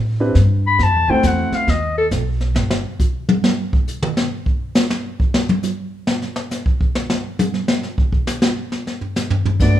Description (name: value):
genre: jazz, small-group swing and bop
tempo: 136 BPM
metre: 4/4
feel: swing 66% on 8ths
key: unclear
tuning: A4 = 441 Hz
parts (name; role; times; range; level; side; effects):
- upright bass; bass; 0.0-2.8, 9.4-9.8 s; G1 to A2; -18 LUFS; equal; none
- warm grand piano; accompaniment; 0.2-1.7, 9.6-9.8 s; A3 to C5; -20 LUFS; equal; none
- jazz brush drum kit; drums; 0.3-9.8 s; brushed snare drum, crash cymbal, hi-hat, kick drum, snare drum, toms; -18 LUFS; equal; none
- clear clarinet; melody; 0.7-2.1, 9.6-9.8 s; A4 to B5; -18 LUFS; left 3 dB; none
room: light reverb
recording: band playing live in one room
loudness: -16 LUFS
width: side -12 dB against mid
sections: 0.0-9.6 A section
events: clarinet solo 0.0-9.6; drum solo 2.6-9.6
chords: 0.0 Am11; 0.8 F#m7b5; 1.7 B; 2.6 N.C.